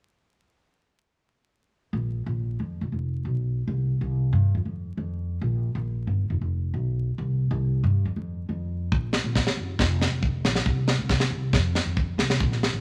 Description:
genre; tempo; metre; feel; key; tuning
highlife guitar band; 138 BPM; 4/4; straight; unclear; A4 = 439 Hz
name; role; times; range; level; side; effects
upright bass; bass; 1.9-12.8 s; F1 to G2; -28 LUFS; equal; none
tight funk drum kit; drums; 8.9-12.7 s; kick drum, snare drum; -26 LUFS; equal; none
room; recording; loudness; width
wet large studio reverb, RT60 1.1 s; vinyl crackle; -26 LUFS; mono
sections
1.9-8.9 A section; 8.9-12.8 B section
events
none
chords
none

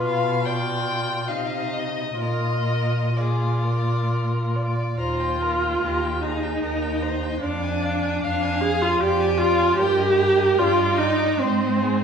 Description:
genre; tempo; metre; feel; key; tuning
classical, slow romantic movement for string quartet; 62-79 BPM; 3/4; rubato; Eb major; A4 = 440 Hz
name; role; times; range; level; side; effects
warm violin; second line; 0.0-12.0 s; G4 to F5; -30 LUFS; left 2 dB; none
warm viola; accompaniment; 0.0-12.0 s; C4 to Ab4; -22 LUFS; right 1 dB; none
warm cello; bass; 0.0-12.0 s; Eb2 to C3; -25 LUFS; right 1 dB; none
warm violin; melody; 0.1-12.0 s; C5 to Bb5; -30 LUFS; left 5 dB; none
room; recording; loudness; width
wet recital hall reverb, RT60 1.4 s; recorded in a church or concert hall; -20 LUFS; side -7 dB against mid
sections
0.0-5.0 A section; 5.0-12.0 B section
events
none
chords
0.0 G7/B; 1.3 Cm; 2.2 Bb; 5.0 Eb; 7.4 Ddim/F; 9.8 Eb/G; 11.4 Ab

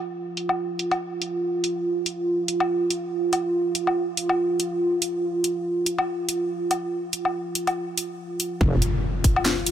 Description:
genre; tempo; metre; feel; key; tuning
deep dubstep; 142 BPM; 4/4; swing 57% on 16ths, half-time; unclear; A4 = 440 Hz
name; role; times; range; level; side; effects
dark analog pad; sustained chords; 0.0-9.7 s; F4; -25 LUFS; right 2 dB; chorus
garage drum kit; drums; 0.4-9.7 s; handclaps, hi-hat, snare drum, woodblock; -26 LUFS; left 1 dB; low-pass filter on hats, low-pass filter on perc, low-pass filter on snare
wobble bass; bass; 8.6-8.8 s; F1; -20 LUFS; equal; chorus
electronic kick drum; drums; 8.6-9.3 s; none; -19 LUFS; equal; none
impact; sound effects; 8.6-9.7 s; none; -26 LUFS; left 1 dB; none
room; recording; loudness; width
light reverb; none; -22 LUFS; side -10 dB against mid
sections
0.0-8.6 A section; 8.6-9.7 B section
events
drop 8.6-9.7; impact 8.6-9.7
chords
none

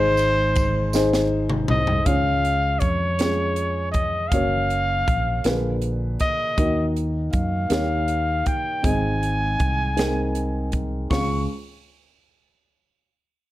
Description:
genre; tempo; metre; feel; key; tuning
slow gospel; 53 BPM (dotted quarters); 6/8; straight; Db major; A4 = 442 Hz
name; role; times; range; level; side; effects
breathy trumpet; melody; 0.0-11.5 s; C5 to Db6; -24 LUFS; equal; slapback echo
dark grand piano; accompaniment; 0.0-11.5 s; Db2 to F5; -25 LUFS; left 1 dB; none
fingered electric bass; bass; 0.0-11.5 s; Gb1 to Gb2; -25 LUFS; equal; none
crisp fusion drum kit; drums; 0.2-11.3 s; hi-hat, kick drum, ride cymbal, snare drum, toms; -26 LUFS; equal; none
tambourine; percussion; 0.2-1.3 s; none; -36 LUFS; right 7 dB; none
room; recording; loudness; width
light reverb, small room ambience; none; -20 LUFS; side -15 dB against mid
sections
0.0-2.1 A section; 2.1-11.1 B section; 11.1-13.4 C section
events
drum fill 0.9-2.1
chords
0.0 Ab; 2.1 Db; 4.3 Gb; 5.4 Bb7b9; 6.6 Ebm; 7.7 Eb7; 8.8 Ab; 11.1 Db

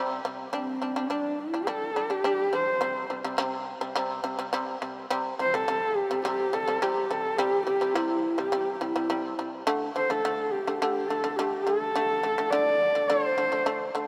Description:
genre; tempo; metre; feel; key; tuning
mongolian traditional, Mongolian folk; 105 BPM; 4/4; straight; C gong mode; A4 = 440 Hz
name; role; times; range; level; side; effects
shamisen; arpeggios; 0.0-14.1 s; C3 to D4; -32 LUFS; equal; none
dark horsehead fiddle; melody; 0.5-13.9 s; C4 to D5; -29 LUFS; equal; none
room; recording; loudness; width
wet huge ambient reverb, RT60 4.2 s; none; -28 LUFS; mono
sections
0.0-5.1 A section; 5.1-14.1 B section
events
none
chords
0.0 C5; 0.5 G5; 2.8 C5; 9.7 D5

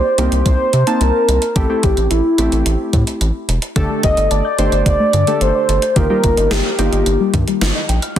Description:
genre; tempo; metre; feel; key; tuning
synth-pop; 109 BPM; 4/4; straight; unclear; A4 = 440 Hz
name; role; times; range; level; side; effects
warm velvety synth lead; melody; 0.0-7.3 s; E4 to Eb5; -17 LUFS; equal; chorus, tape echo
warm analog keys; accompaniment; 0.0-8.2 s; A3 to A5; -21 LUFS; right 1 dB; chorus
rubbery square bass; bass; 0.2-8.2 s; E1 to C3; -17 LUFS; equal; none
gated 80s digital drum machine; drums; 0.2-8.2 s; hi-hat, kick drum, snare drum; -19 LUFS; equal; gated reverb, gated reverb snare
soft round pluck; arpeggios; 3.8-8.2 s; D3 to G6; -23 LUFS; left 4 dB; chorus, tape echo
room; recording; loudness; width
light reverb; dense, heavily limited modern master; -13 LUFS; side -10 dB against mid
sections
0.0-8.2 A section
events
none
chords
0.0 Cm7; 1.6 Am7; 3.8 Gsus2; 6.0 Ebadd9/G

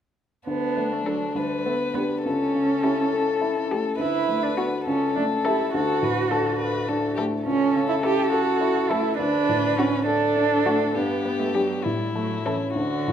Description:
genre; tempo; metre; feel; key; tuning
quick classical-period movement for piano quartet; 68 BPM (dotted quarters); 6/8; straight; D major; A4 = 440 Hz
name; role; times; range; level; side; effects
muted violin; melody; 0.5-13.1 s; D4 to B4; -27 LUFS; left 5 dB; none
muted cello; second line; 0.5-13.1 s; D3 to G4; -25 LUFS; right 6 dB; none
warm baby grand piano; accompaniment; 0.5-13.1 s; C#2 to A4; -25 LUFS; left 1 dB; none
muted violin; second line; 1.1-12.7 s; F#4 to B4; -33 LUFS; left 4 dB; none
room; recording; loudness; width
wet recital hall reverb, RT60 1.5 s; none; -21 LUFS; side -9 dB against mid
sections
0.5-13.1 A section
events
none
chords
0.5 D5; 1.4 G/D; 2.2 A7/C#; 4.0 D; 4.9 A7/C#; 5.7 D; 7.5 A/C#; 9.2 D; 10.9 G; 11.8 A

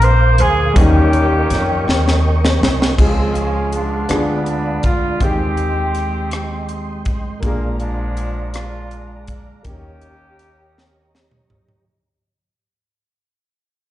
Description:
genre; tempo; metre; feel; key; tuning
slow gospel; 54 BPM (dotted quarters); 6/8; straight; unclear; A4 = 440 Hz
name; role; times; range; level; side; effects
warm horn section; melody; 0.0-11.1 s; D3 to C5; -21 LUFS; equal; plate reverb, slapback echo
warm grand piano; accompaniment; 0.0-11.9 s; Bb2 to Bb4; -22 LUFS; left 1 dB; plate reverb, slapback echo
mellow tonewheel organ; sustained chords; 0.0-11.9 s; Ab3 to D6; -25 LUFS; right 3 dB; slow rotary speaker, chorus vibrato, plate reverb
upright bass; bass; 0.0-11.8 s; A1 to F2; -18 LUFS; equal; none
crisp fusion drum kit; drums; 0.0-11.9 s; crash cymbal, hi-hat, kick drum, rim click, snare drum, toms; -19 LUFS; equal; none
room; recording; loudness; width
light reverb; live gig heard through the venue's PA, recital hall reverb, nothing above 10.9 kHz; -14 LUFS; side -14 dB against mid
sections
0.0-3.0 A section; 3.0-11.9 B section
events
drum fill 1.9-3.0, 10.8-11.9; fade-out 3.0-11.9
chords
0.0 Bb7; 0.8 Eb7; 3.0 Dbmaj7; 4.1 Ddim7; 5.2 Abmaj7/Eb; 7.4 Bb7; 9.6 Eb7

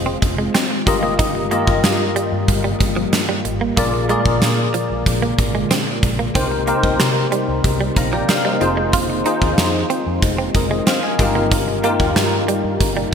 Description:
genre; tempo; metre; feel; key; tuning
1980s-style pop; 93 BPM; 4/4; straight; F dorian; A4 = 440 Hz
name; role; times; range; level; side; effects
bell-like tine electric piano; accompaniment; 0.0-13.1 s; G2 to Bb5; -20 LUFS; left 2 dB; ensemble chorus
ethereal airy pad; sustained chords; 0.0-13.1 s; D3 to G4; -26 LUFS; equal; ensemble chorus, built-in reverb, phaser
vintage muted fingered electric bass; bass; 0.0-13.0 s; F1 to C3; -24 LUFS; equal; none
direct-recorded clean electric guitar; riff; 0.1-13.1 s; F3 to F4; -25 LUFS; right 4 dB; wide subtle chorus, digital delay
gated 80s drum kit; drums; 0.2-13.0 s; hi-hat, kick drum, snare drum; -19 LUFS; right 1 dB; gated reverb
room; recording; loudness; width
moderate plate reverb, RT60 3.2 s; bright 1980s-style digital production; -15 LUFS; side -7 dB against mid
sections
0.0-13.1 A section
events
none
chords
0.0 Fm7; 0.9 Ebadd9/G; 3.8 Bb7; 6.4 Cm7; 8.6 Fm7; 11.2 Ebadd9

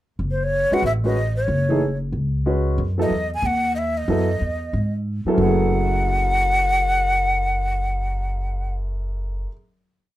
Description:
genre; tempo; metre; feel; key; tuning
modal jazz; 185 BPM; 4/4; swing 61% on 8ths; F# dorian; A4 = 440 Hz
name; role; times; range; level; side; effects
upright bass; bass; 0.2-9.4 s; F#1 to G#2; -23 LUFS; equal; none
breathy jazz flute; melody; 0.3-8.8 s; B#4 to G#5; -22 LUFS; equal; none
warm baby grand piano; accompaniment; 0.7-9.5 s; F#2 to B4; -23 LUFS; right 1 dB; none
room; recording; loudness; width
moderate club reverb, RT60 0.5 s; none; -19 LUFS; side -14 dB against mid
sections
0.2-5.4 A section; 5.4-8.0 final chord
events
none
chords
0.2 F#madd9; 2.8 G#m; 5.4 F#m9

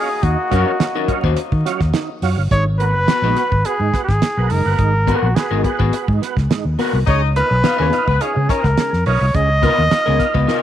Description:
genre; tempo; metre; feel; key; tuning
funk; 105 BPM; 4/4; straight; unclear; A4 = 440 Hz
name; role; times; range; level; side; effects
mellow trumpet; melody; 0.0-10.6 s; Gb4 to Eb5; -19 LUFS; equal; none
mellow horn section; second line; 0.0-2.2, 7.1-8.7 s; Bb3 to F5; -26 LUFS; left 12 dB; tape echo
tonewheel organ; stabs; 0.0-10.6 s; Ab2 to Gb4; -25 LUFS; right 9 dB; chorus vibrato, slow rotary speaker
fingered electric bass; bass; 0.2-10.5 s; Gb1 to Eb3; -17 LUFS; equal; none
damped 70s drum kit; drums; 0.2-10.6 s; hi-hat, kick drum, snare drum; -20 LUFS; right 2 dB; none
electric guitar at the edge of break-up; accompaniment; 0.5-10.6 s; Cb4 to C5; -23 LUFS; left 11 dB; harmonic tremolo
room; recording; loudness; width
light reverb; 1960s-style stereo with parts hard left and right, vinyl crackle; -14 LUFS; side -11 dB against mid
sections
0.0-2.5 A section; 2.5-10.6 B section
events
none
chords
0.0 Ebm7; 2.5 Abm9; 7.1 Db13

